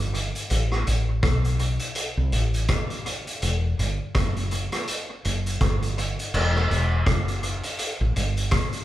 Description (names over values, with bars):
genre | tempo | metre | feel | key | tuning
lovers rock reggae | 82 BPM | 4/4 | swing 58% on 16ths | E minor | A4 = 442 Hz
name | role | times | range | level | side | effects
woody fretless electric bass | bass | 0.0-8.5 s | E1 to C2 | -24 LUFS | equal | none
vintage drum kit | drums | 0.1-8.8 s | crash cymbal, hi-hat, kick drum, rim click | -26 LUFS | equal | dub echo
room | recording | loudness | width
moderate large studio reverb, RT60 1.1 s | band playing live in one room | -22 LUFS | side -14 dB against mid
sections
0.0-6.3 A section; 6.3-8.8 B section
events
none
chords
none